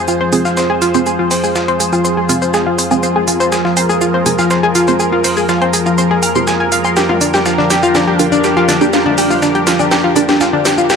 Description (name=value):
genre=melodic techno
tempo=122 BPM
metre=4/4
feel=straight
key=F dorian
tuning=A4 = 440 Hz
part: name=lush unison pad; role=sustained chords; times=0.0-11.0 s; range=F3 to C5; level=-16 LUFS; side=equal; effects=chorus, phaser
part: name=analog pluck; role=arpeggios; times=0.1-11.0 s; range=D4 to F6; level=-14 LUFS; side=left 1 dB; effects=chorus, dub echo
part: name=breakbeat sampler-style drum kit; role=drums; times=0.1-11.0 s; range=hi-hat, shaker, snare drum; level=-25 LUFS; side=equal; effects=high-pass filter on perc, high-pass filter on snare, high-pass filter on hats, high-pass filter on room
part: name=techno drum kit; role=drums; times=0.1-11.0 s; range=hi-hat, shaker, snare drum, toms, woodblock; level=-18 LUFS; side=right 1 dB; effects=high-pass filter on perc, high-pass filter on snare, high-pass filter on hats, high-pass filter on toms, high-pass filter on room
part: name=filtered dub chord stab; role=stabs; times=0.3-10.8 s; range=C4 to Bb4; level=-19 LUFS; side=right 2 dB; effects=phaser, dub echo
room=wet lush hall reverb, RT60 2.0 s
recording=dark, warm production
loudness=-11 LUFS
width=side -6 dB against mid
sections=0.0-11.0 A section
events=build-up 0.0-11.0; filter sweep on synth stab 0.0-11.0; drum fill 7.0-11.0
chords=0.0 Fm; 7.0 Bb6/F